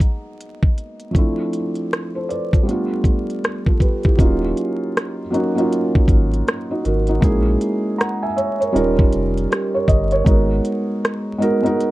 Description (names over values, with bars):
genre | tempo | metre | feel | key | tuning
lo-fi hip hop | 79 BPM | 4/4 | swing 64% on 16ths | Eb minor | A4 = 440 Hz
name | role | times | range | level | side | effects
felt-muted upright piano | accompaniment | 0.0-11.9 s | F3 to Bb5 | -19 LUFS | right 1 dB | low-pass filter
pop drum kit | drums | 0.0-11.9 s | hi-hat, kick drum, rim click | -16 LUFS | equal | none
soft dub sub bass | bass | 4.2-10.6 s | Eb1 to Bb1 | -20 LUFS | equal | none
room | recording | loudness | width
light reverb | vinyl crackle | -16 LUFS | side -17 dB against mid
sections
0.0-4.2 A section; 4.2-11.9 B section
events
none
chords
0.0 Abm7; 1.1 Dm7; 2.7 G7; 4.2 Ebm7; 7.2 Bbm7b5; 8.7 Eb7; 10.3 Abm7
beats
0.39 | 1.15 1.91 2.67 3.42 | 4.18 4.94 5.70 6.46 | 7.22 7.98 8.74 9.50 | 10.26 11.02 11.78